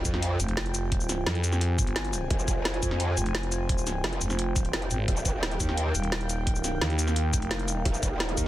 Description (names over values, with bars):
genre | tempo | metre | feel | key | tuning
dark technical drum and bass | 173 BPM | 4/4 | straight | F minor | A4 = 440 Hz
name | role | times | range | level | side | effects
dark analog pad | sustained chords | 0.0-8.5 s | Eb4 to Ab5 | -34 LUFS | equal | chorus, sidechain pumping
growl bass | bass | 0.0-8.5 s | Eb1 to F2 | -29 LUFS | equal | chorus, overdrive
sub drop | sound effects | 0.0-0.9 s | none | -39 LUFS | right 1 dB | none
drum and bass drum kit | drums | 0.1-8.4 s | cabasa, hi-hat, snare drum | -31 LUFS | equal | none
electronic kick drum | drums | 0.1-8.4 s | none | -28 LUFS | equal | none
growling FM bass | bass | 0.4-7.8 s | Eb1 to F2 | -28 LUFS | equal | none
room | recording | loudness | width
little or no reverb | dense, heavily limited modern master | -25 LUFS | side -14 dB against mid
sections
0.0-8.5 A section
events
impact 0.0-0.9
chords
0.0 Fm; 5.1 Eb